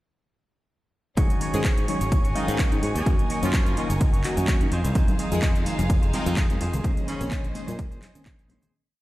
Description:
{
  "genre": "filtered disco house",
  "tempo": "127 BPM",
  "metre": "4/4",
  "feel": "swing 54% on 16ths",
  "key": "Bb minor",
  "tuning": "A4 = 440 Hz",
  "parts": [
    { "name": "mellow tine electric piano", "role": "accompaniment", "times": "1.2-8.7 s", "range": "Eb3 to F5", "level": "-31 LUFS", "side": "left 1 dB", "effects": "medium stereo tremolo, phaser, vintage 12-bit sampler grit, sidechain pumping" },
    { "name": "rich studio violin section", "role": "sustained chords", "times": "1.2-8.7 s", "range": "Db4 to Ab5", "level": "-36 LUFS", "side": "left 2 dB", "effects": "sidechain pumping" },
    { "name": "clean electric guitar", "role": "riff", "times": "1.2-8.7 s", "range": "Bb3 to Db5", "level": "-34 LUFS", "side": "right 4 dB", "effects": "sidechain pumping" },
    { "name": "modern bright fingered electric bass", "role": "bass", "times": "1.2-8.6 s", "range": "F1 to Bb2", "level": "-27 LUFS", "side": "equal", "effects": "sidechain pumping" },
    { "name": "electronic kick drum", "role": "drums", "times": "1.2-8.4 s", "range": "none", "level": "-23 LUFS", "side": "equal", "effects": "overdrive" },
    { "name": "house drum kit", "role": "drums", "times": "1.2-8.7 s", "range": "handclaps, hi-hat, shaker", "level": "-34 LUFS", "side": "equal", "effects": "overdrive" },
    { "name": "brilliant horn section", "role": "melody", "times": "1.5-7.4 s", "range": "Db3 to Ab4", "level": "-34 LUFS", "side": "equal", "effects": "sidechain pumping" },
    { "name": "tube shaker and congas", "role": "percussion", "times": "5.0-8.7 s", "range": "none", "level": "-34 LUFS", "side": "left 1 dB", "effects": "sidechain pumping on perc" }
  ],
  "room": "digital ambience",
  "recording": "played on a big sound system in a bare room, stone room reverb",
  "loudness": "-21 LUFS",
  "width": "side -17 dB against mid",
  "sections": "1.2-8.7 drop",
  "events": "drop 1.2-8.7; fade-out 6.2-8.7",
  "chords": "1.2 Ab7sus4; 3.1 Gb6; 4.7 Fm7; 6.8 Bbm11"
}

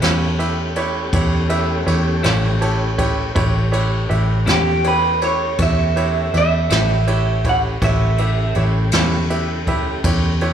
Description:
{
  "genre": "slow blues",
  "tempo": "54 BPM (dotted quarters)",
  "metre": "12/8",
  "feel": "straight",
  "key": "A mixolydian",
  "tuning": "A4 = 439 Hz",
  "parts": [
    { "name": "bright upright piano", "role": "accompaniment", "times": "0.0-10.5 s", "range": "E4 to A5", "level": "-24 LUFS", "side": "right 2 dB", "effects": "slapback echo" },
    { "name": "clean electric guitar", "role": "accompaniment", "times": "0.0-9.2 s", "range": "A2 to E4", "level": "-27 LUFS", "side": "left 5 dB", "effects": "tremolo" },
    { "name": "tonewheel organ", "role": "sustained chords", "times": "0.0-10.5 s", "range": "C#3 to G4", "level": "-28 LUFS", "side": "left 1 dB", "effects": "slow rotary speaker" },
    { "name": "vintage muted fingered electric bass", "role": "bass", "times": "0.0-10.5 s", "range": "A1 to E2", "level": "-19 LUFS", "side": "equal", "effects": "none" },
    { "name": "jazz brush drum kit", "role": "drums", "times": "0.0-10.5 s", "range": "kick drum, ride cymbal, snare drum", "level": "-23 LUFS", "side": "left 1 dB", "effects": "none" },
    { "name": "electric guitar through a small old amp", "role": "melody", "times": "4.5-8.6 s", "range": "G4 to F#5", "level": "-20 LUFS", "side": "right 3 dB", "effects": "slapback echo" }
  ],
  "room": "light reverb",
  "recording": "live gig heard through the venue's PA, club reverb",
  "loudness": "-15 LUFS",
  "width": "side -9 dB against mid",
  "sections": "0.0-10.5 A section",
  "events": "upright piano fill 2.2-3.4",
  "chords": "0.0 A7"
}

